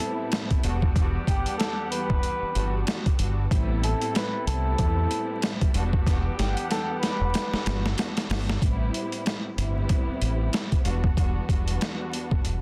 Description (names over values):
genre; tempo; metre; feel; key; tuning
hip hop, boom-bap hip-hop; 94 BPM; 4/4; swing 58% on 16ths; A minor; A4 = 440 Hz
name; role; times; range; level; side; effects
trumpet with cup mute; melody; 0.0-7.9 s; G4 to B4; -34 LUFS; equal; high-pass filter, low-pass filter, tape echo
rich studio string section; accompaniment; 0.0-12.6 s; E2 to F#5; -35 LUFS; equal; high-pass filter, low-pass filter
tonewheel organ; sustained chords; 0.0-8.6 s; G4 to E6; -49 LUFS; equal; none
bright saxophone section; stabs; 0.0-8.3 s; E3 to A4; -43 LUFS; equal; high-pass filter, low-pass filter, tape echo
boom bap sampler-style drum kit; drums; 0.0-12.6 s; hi-hat, kick drum, snare drum; -28 LUFS; equal; none
deep dub fingered electric bass; bass; 0.6-12.6 s; E1 to E2; -29 LUFS; equal; none
room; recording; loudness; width
studio reverb; dense, heavily limited modern master, vinyl crackle; -26 LUFS; mono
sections
0.0-8.6 A section; 8.6-12.6 B section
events
drum fill 6.1-8.6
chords
0.0 Am9; 0.6 Em9; 3.5 Am9; 5.7 Em9; 8.6 Am9; 10.9 Em9